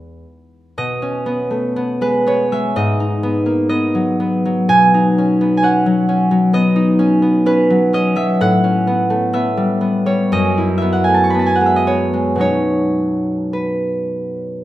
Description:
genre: classical, solo harp piece.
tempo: 53-66 BPM.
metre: 4/4.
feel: rubato.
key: B mixolydian.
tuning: A4 = 441 Hz.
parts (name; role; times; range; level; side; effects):
concert harp; solo; 0.0-14.6 s; E2 to C#6; -14 LUFS; equal; none.
room: moderate recital hall reverb, RT60 1.4 s.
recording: close, detailed microphones.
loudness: -13 LUFS.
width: side -14 dB against mid.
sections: 0.8-14.6 A section.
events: none.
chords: 0.0 Emaj7; 0.8 B69; 2.8 G#m9; 4.7 Badd9; 8.4 A9; 10.3 F#9sus4; 12.4 Badd9.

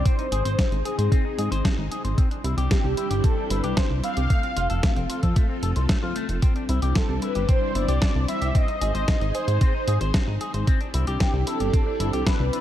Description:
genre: italo disco.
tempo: 113 BPM.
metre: 4/4.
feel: straight.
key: C major.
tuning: A4 = 440 Hz.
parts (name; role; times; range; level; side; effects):
mellow synth brass; melody; 0.0-12.6 s; G4 to F5; -29 LUFS; equal; chorus, phaser.
string machine, full ensemble; sustained chords; 0.0-12.6 s; G3 to D5; -31 LUFS; left 1 dB; ensemble chorus.
electric guitar with an envelope filter; arpeggios; 0.0-12.6 s; A3 to C5; -34 LUFS; left 4 dB; low-pass filter, ping-pong delay.
chorused synth bass; bass; 0.0-12.5 s; F1 to Ab2; -24 LUFS; equal; none.
detuned 8-bit digital drum machine; drums; 0.1-12.6 s; hi-hat, snare drum; -30 LUFS; equal; none.
electronic kick drum; drums; 0.1-12.4 s; none; -22 LUFS; equal; none.
room: light reverb, digital ambience.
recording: dark, warm production.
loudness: -21 LUFS.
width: side -12 dB against mid.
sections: 0.0-12.6 A section.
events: none.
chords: 0.1 Ab; 2.2 Cadd9; 4.3 F; 6.4 Cadd9; 8.5 Ab; 10.7 Cadd9.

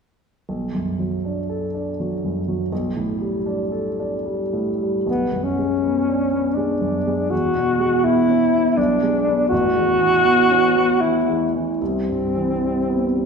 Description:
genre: classical, impressionist duo for alto saxophone and grand piano.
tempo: 71-83 BPM.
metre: 3/4.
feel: rubato.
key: unclear.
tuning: A4 = 437 Hz.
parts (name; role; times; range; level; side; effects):
clear grand piano; accompaniment; 0.5-13.3 s; A1 to A4; -21 LUFS; right 1 dB; none.
clear alto saxophone; melody; 5.1-13.3 s; B3 to F#4; -18 LUFS; left 1 dB; none.
room: wet recital hall reverb, RT60 1.7 s.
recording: heard from further back in the room.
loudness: -18 LUFS.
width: side -5 dB against mid.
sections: 0.5-5.1 A section; 5.1-13.3 B section.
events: none.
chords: 0.5 Bm7; 2.7 A9sus4/B; 5.1 Bm6; 7.3 E69; 8.8 Bm6; 9.5 A69; 11.8 Cmaj7.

